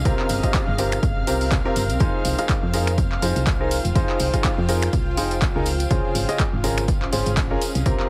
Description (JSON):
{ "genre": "piano house", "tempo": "123 BPM", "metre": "4/4", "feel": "swing 56% on 16ths", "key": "F minor", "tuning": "A4 = 440 Hz", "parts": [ { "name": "muted studio violin section", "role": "sustained chords", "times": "0.0-8.1 s", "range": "F5 to F6", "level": "-35 LUFS", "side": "equal", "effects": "sidechain pumping" }, { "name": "solid FM bass", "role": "bass", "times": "0.0-8.0 s", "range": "F1 to F2", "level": "-27 LUFS", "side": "equal", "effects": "sidechain pumping" }, { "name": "granular cloud pad", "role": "texture", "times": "0.0-8.1 s", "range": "C4 to G5", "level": "-34 LUFS", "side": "equal", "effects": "built-in reverb, sidechain pumping" }, { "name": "clear upright piano", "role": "riff", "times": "0.1-8.1 s", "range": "C3 to F5", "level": "-28 LUFS", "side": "equal", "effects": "sidechain pumping" }, { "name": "electronic kick drum", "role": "drums", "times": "0.1-8.0 s", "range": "none", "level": "-26 LUFS", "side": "equal", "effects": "none" }, { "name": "punchy analog drum machine", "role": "drums", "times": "0.1-8.1 s", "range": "finger snaps, handclaps, hi-hat", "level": "-31 LUFS", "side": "equal", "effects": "none" }, { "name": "tambourine", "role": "percussion", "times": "0.1-8.0 s", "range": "none", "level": "-38 LUFS", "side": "equal", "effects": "none" } ], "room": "little or no reverb", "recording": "heavily compressed radio sound, multiband compression", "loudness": "-21 LUFS", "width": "mono", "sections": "0.0-8.1 A section", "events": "none", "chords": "0.0 C7sus4; 2.0 Fm7; 5.7 Dbmaj7" }